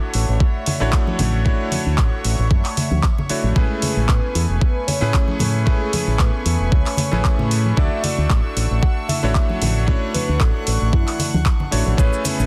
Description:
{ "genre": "nu-disco, nu disco", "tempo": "114 BPM", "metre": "4/4", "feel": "swing 54% on 16ths", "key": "unclear", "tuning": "A4 = 443 Hz", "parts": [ { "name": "bright electric grand piano", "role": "accompaniment", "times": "0.0-12.5 s", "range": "A3 to D5", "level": "-28 LUFS", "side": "equal", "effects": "digital delay" }, { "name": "warm studio violin section", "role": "sustained chords", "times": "0.0-12.5 s", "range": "D4 to F#6", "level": "-34 LUFS", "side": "equal", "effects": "sidechain pumping" }, { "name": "fingered electric bass with an envelope filter", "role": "bass", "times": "0.1-12.5 s", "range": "E1 to A2", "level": "-22 LUFS", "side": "equal", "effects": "tube saturation" }, { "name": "pop drum kit", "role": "drums", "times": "0.1-12.5 s", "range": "cabasa, handclaps, hi-hat", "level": "-28 LUFS", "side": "equal", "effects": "overdrive" }, { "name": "electronic kick drum", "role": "drums", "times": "0.4-12.1 s", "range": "none", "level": "-20 LUFS", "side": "equal", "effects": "overdrive" }, { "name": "congas and cabasa", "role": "percussion", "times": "0.7-12.5 s", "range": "none", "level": "-28 LUFS", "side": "equal", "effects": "none" }, { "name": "soft octave-layered synth lead", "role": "melody", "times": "3.6-12.5 s", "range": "E4 to F#5", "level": "-31 LUFS", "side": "equal", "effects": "chorus, phaser, digital delay" } ], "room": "light reverb, digital ambience", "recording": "dense, heavily limited modern master", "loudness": "-19 LUFS", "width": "mono", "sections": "0.0-12.5 A section", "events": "none", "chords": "0.0 Dmaj9; 3.6 Amaj9; 7.8 Dmaj9" }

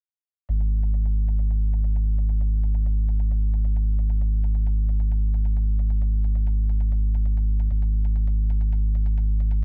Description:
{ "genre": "driving peak-time techno", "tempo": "133 BPM", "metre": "4/4", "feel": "straight", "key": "unclear", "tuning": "A4 = 440 Hz", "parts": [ { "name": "warm sub bass", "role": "bass", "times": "0.5-9.6 s", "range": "G#1", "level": "-24 LUFS", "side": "equal", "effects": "low-pass filter" }, { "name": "electronic hi-hat", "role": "drums", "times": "0.5-9.6 s", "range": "none", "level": "-59 LUFS", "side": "equal", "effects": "overdrive, low-pass filter on hats" } ], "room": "digital ambience", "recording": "dry, gritty hardware recording", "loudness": "-24 LUFS", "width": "mono", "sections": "0.5-9.6 A section", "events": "none", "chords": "none" }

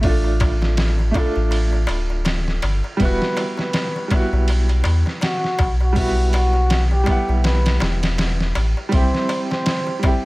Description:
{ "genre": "trip hop", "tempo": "81 BPM", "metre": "4/4", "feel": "swing 58% on 16ths", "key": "unclear", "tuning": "A4 = 440 Hz", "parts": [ { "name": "bright upright piano", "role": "accompaniment", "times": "0.0-10.2 s", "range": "G3 to F#5", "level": "-24 LUFS", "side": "right 2 dB", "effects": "tremolo, vintage 12-bit sampler grit, tape echo" }, { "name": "warm sub bass", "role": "bass", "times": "0.0-9.1 s", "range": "D1 to E2", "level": "-18 LUFS", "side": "equal", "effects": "none" }, { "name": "trip hop sampler-style drum kit", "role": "drums", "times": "0.0-10.2 s", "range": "hi-hat, kick drum, ride cymbal, snare drum", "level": "-22 LUFS", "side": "equal", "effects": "none" }, { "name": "darbuka", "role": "percussion", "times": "0.0-10.2 s", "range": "none", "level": "-31 LUFS", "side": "left 2 dB", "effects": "none" }, { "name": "trumpet with bucket mute", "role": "melody", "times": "3.0-10.0 s", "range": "F#4 to C5", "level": "-25 LUFS", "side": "equal", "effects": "tape echo" } ], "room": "small room ambience", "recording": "none", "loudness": "-17 LUFS", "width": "side -21 dB against mid", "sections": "0.0-10.2 A section", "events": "none", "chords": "0.0 Dm; 3.0 Emadd9; 8.9 C" }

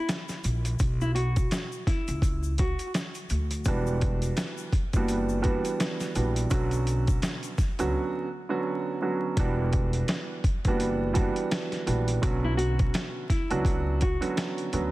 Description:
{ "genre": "hip hop, boom-bap hip-hop", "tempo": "84 BPM", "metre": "4/4", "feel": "swing 58% on 16ths", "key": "B harmonic minor", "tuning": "A4 = 440 Hz", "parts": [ { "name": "nylon-string guitar", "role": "melody", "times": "0.0-2.9, 12.4-14.3 s", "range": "E4 to F#4", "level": "-34 LUFS", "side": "left 1 dB", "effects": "high-pass filter, low-pass filter, tape echo" }, { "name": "boom bap sampler-style drum kit", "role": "drums", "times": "0.1-14.9 s", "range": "hi-hat, kick drum, snare drum", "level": "-28 LUFS", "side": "equal", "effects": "overdrive, vintage 12-bit sampler grit" }, { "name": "tube shaker", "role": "percussion", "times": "0.1-7.9 s", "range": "none", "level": "-46 LUFS", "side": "left 10 dB", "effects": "none" }, { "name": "upright bass", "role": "bass", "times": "0.4-14.9 s", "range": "E1 to D2", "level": "-28 LUFS", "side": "equal", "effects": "none" }, { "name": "warm upright piano", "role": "accompaniment", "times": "3.7-14.9 s", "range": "D3 to F#4", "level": "-29 LUFS", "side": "right 3 dB", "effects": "high-pass filter, low-pass filter" } ], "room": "light reverb, studio reverb", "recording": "dense, heavily limited modern master, vinyl crackle", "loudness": "-25 LUFS", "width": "side -18 dB against mid", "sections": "0.0-9.4 A section; 9.4-14.9 B section", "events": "break 0.0-3.7, 7.9-9.4", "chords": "0.0 N.C.; 0.8 Bmadd9; 3.7 Em9; 6.5 Bmadd9; 9.4 Em9; 12.2 Bmadd9" }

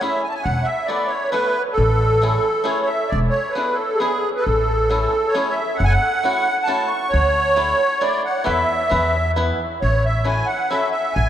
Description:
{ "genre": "musette waltz", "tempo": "135 BPM", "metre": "3/4", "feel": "straight", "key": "A major", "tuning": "A4 = 440 Hz", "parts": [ { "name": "musette accordion", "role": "melody", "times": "0.0-11.3 s", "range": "G#4 to C#6", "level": "-19 LUFS", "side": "right 1 dB", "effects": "none" }, { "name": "bluegrass banjo", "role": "accompaniment", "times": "0.0-10.9 s", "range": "A3 to B4", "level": "-25 LUFS", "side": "left 1 dB", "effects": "none" }, { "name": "upright bass", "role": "bass", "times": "0.5-11.3 s", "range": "E1 to E2", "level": "-20 LUFS", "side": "equal", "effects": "none" } ], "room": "wet cathedral reverb, RT60 5.0 s", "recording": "in a vast, echoing space, faint mains hum", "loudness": "-17 LUFS", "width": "side -10 dB against mid", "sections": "0.0-11.3 A section", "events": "none", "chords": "0.5 Esus4; 1.8 Amaj7; 3.1 E7; 4.5 Amaj7; 5.8 F#m7; 7.1 Dsus2; 8.5 Esus4; 8.9 E; 9.8 A6" }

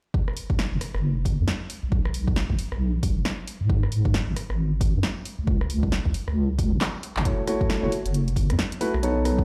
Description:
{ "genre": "UK garage, two-step garage", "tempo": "135 BPM", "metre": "4/4", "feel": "swing 61% on 16ths", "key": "F# dorian", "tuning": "A4 = 440 Hz", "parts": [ { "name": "electronic kick drum", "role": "drums", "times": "0.1-9.4 s", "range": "none", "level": "-28 LUFS", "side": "equal", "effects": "none" }, { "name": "punchy analog drum machine", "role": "drums", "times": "0.3-9.4 s", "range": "handclaps, hi-hat, rim click, snare drum", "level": "-32 LUFS", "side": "equal", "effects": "none" }, { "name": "deep soft wobble bass", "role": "bass", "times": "0.7-9.4 s", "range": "F#1 to G#2", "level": "-26 LUFS", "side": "equal", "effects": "chorus, tube saturation" }, { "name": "dark grand piano", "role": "stabs", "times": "7.3-9.4 s", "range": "A3 to C#5", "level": "-28 LUFS", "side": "equal", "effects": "delay" } ], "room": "little or no reverb", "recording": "played on a big sound system in a bare room, large studio reverb, vinyl crackle", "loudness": "-25 LUFS", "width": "mono", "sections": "0.1-7.3 A section; 7.3-9.4 B section", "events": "drum fill 6.8-7.3", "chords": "0.1 N.C.; 1.9 B5; 3.7 C#5; 7.3 F#m7" }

